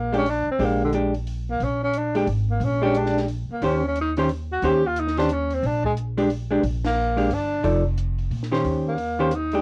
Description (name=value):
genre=jazz, small-group swing and bop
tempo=179 BPM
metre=3/4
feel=swing 63% on 8ths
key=Bb mixolydian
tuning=A4 = 442 Hz
part: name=breathy tenor saxophone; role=melody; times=0.0-9.6 s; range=D3 to G4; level=-26 LUFS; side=equal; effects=cassette tape
part: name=upright bass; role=bass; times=0.0-9.6 s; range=F1 to Bb2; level=-29 LUFS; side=equal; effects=none
part: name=vintage hollow-body jazz guitar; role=accompaniment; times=0.1-9.6 s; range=Eb3 to D5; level=-24 LUFS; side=equal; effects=cassette tape
part: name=compact cocktail drum kit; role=drums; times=0.1-9.6 s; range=hi-hat, kick drum, ride cymbal, snare drum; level=-40 LUFS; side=equal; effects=cassette tape
room=light reverb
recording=home recording on cassette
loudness=-23 LUFS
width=mono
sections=0.0-9.6 A section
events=band accent 6.8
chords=0.0 Bb6; 3.6 Eb6; 5.6 Bb6; 7.6 F13; 8.6 Eb6